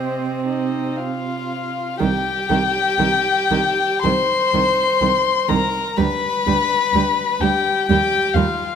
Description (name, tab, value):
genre	classical, slow romantic movement for string quartet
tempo	56-64 BPM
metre	4/4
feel	rubato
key	C minor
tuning	A4 = 438 Hz
part	dark violin	melody	0.0-8.8 s	Eb5 to C6	-20 LUFS	left 7 dB	none
part	warm violin	second line	0.0-8.8 s	Eb4 to C5	-23 LUFS	equal	none
part	warm viola	accompaniment	0.0-8.4 s	Eb3 to C4	-25 LUFS	right 5 dB	none
part	warm cello	bass	0.0-8.4 s	C2 to C3	-24 LUFS	right 4 dB	none
room	moderate recital hall reverb, RT60 1.5 s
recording	none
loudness	-16 LUFS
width	side -7 dB against mid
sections	0.0-2.0 A section; 2.0-8.8 B section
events	none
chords	0.0 Cm; 6.0 G/D; 7.9 Eb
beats	0.98 | 2.02 3.00 4.05 5.03 | 5.98 6.94 7.89